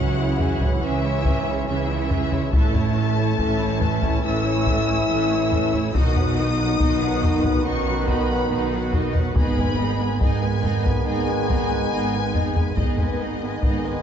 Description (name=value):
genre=cinematic, epic orchestral film score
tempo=70 BPM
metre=4/4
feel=straight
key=unclear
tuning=A4 = 436 Hz
part: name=clear symphonic violin section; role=melody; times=0.0-14.0 s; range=D#5 to E6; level=-30 LUFS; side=left 4 dB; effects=none
part: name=warm symphonic violin section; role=second line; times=0.0-14.0 s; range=E4 to G#5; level=-31 LUFS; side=left 3 dB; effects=none
part: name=warm symphonic viola section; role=accompaniment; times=0.0-14.0 s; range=D#3 to F#4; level=-30 LUFS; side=right 2 dB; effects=none
part: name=bright trombone section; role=sustained chords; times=0.0-14.0 s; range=D#3 to C#4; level=-29 LUFS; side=right 3 dB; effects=none
part: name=dark French horn section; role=sustained chords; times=0.0-14.0 s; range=D#3 to E4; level=-27 LUFS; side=left 5 dB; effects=none
part: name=rich studio double bass section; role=bass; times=0.0-14.0 s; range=G#1 to C#2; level=-28 LUFS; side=right 5 dB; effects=none
part: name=rich symphonic cello section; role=bass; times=0.0-14.0 s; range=G#2 to C#3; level=-28 LUFS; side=right 3 dB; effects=none
part: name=taiko ensemble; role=drums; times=0.4-14.0 s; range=none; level=-23 LUFS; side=left 1 dB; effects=none
part: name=timpani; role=percussion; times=9.4-10.6 s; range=G#2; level=-32 LUFS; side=equal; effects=none
room=moderate concert hall reverb, RT60 2.1 s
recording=dark, warm production, nothing above 7.6 kHz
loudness=-19 LUFS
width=side -8 dB against mid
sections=0.0-14.0 A section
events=none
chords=0.0 C#m; 2.5 A; 5.9 B; 9.4 G#m